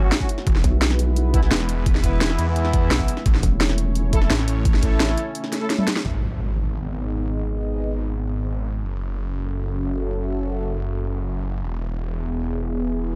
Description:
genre	dark technical drum and bass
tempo	172 BPM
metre	4/4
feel	straight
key	G# phrygian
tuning	A4 = 440 Hz
part	sweeping resonant pad	sustained chords	0.0-13.2 s	G#3 to E5	-32 LUFS	equal	chorus, sidechain pumping
part	warm brass ensemble	stabs	0.0-5.9 s	E3 to A4	-31 LUFS	equal	dub echo
part	snarling distorted saw bass	bass	0.0-13.2 s	E1 to E2	-27 LUFS	equal	distortion, tube saturation, sidechain pumping
part	drum and bass drum kit	drums	0.1-6.0 s	hi-hat, snare drum, toms	-26 LUFS	equal	overdrive
part	electronic kick drum	drums	0.2-4.9 s	none	-22 LUFS	equal	overdrive
part	vowel-sweep wobble bass	bass	0.6-4.3 s	E1 to B1	-22 LUFS	equal	chorus
part	impact	sound effects	6.0-7.4 s	none	-32 LUFS	equal	none
room	digital ambience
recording	dark, warm production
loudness	-22 LUFS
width	mono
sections	0.0-6.0 A section; 6.0-13.2 B section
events	drop 0.0-6.0; break 5.4-6.0; drum fill 5.7-6.0; band accent 6.0; impact 6.0-7.4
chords	0.5 E; 3.3 A; 6.0 G#m; 8.8 F#m7; 11.6 E

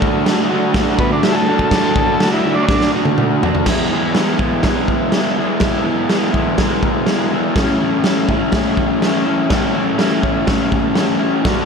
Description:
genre	garage rock duo or trio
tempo	124 BPM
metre	4/4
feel	straight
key	E mixolydian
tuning	A4 = 440 Hz
part	raw garage guitar	riff	0.0-11.7 s	A2 to F#4	-16 LUFS	equal	overdrive
part	raw garage drum kit	drums	0.0-11.6 s	crash cymbal, kick drum, snare drum, toms	-18 LUFS	equal	none
part	combo organ	melody	1.0-2.9 s	B3 to A4	-18 LUFS	left 1 dB	none
room	light reverb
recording	none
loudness	-14 LUFS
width	side -5 dB against mid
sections	0.0-3.7 A section; 3.7-11.7 B section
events	transistor combo organ solo 0.0-3.7; drum fill 2.7-3.7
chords	0.0 D; 3.7 E; 7.6 A

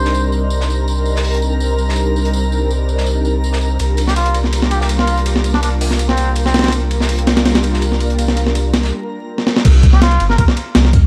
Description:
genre	drum and bass, jungle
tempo	164 BPM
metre	4/4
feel	straight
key	unclear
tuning	A4 = 442 Hz
part	trumpet with cup mute	melody	0.0-0.3, 4.1-6.7, 9.9-10.4 s	C4 to C5	-26 LUFS	equal	dub echo
part	soft string machine	sustained chords	0.0-9.6 s	G3 to Bb4	-25 LUFS	equal	phaser, ensemble chorus
part	soft dub sub bass	bass	0.0-11.1 s	G1 to Eb2	-18 LUFS	equal	none
part	twinkling granular texture	texture	0.1-8.9 s	Bb4 to Bb5	-30 LUFS	equal	built-in reverb
part	crunchy breakbeat drum kit	drums	0.1-8.9 s	hi-hat, snare drum, tambourine	-31 LUFS	equal	high-pass filter on hats, high-pass filter on snare, high-pass filter on perc, high-pass filter on room
part	breakbeat sampler-style drum kit	drums	3.8-11.0 s	crash cymbal, hi-hat, kick drum, ride cymbal, snare drum	-18 LUFS	equal	none
room	light reverb, studio reverb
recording	vinyl crackle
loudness	-15 LUFS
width	mono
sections	0.0-9.7 A section; 9.7-11.1 B section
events	break 8.9-9.7; drum fill 9.4; drop 9.7-11.1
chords	0.0 Cm9; 3.8 Gm7/C; 9.7 N.C.

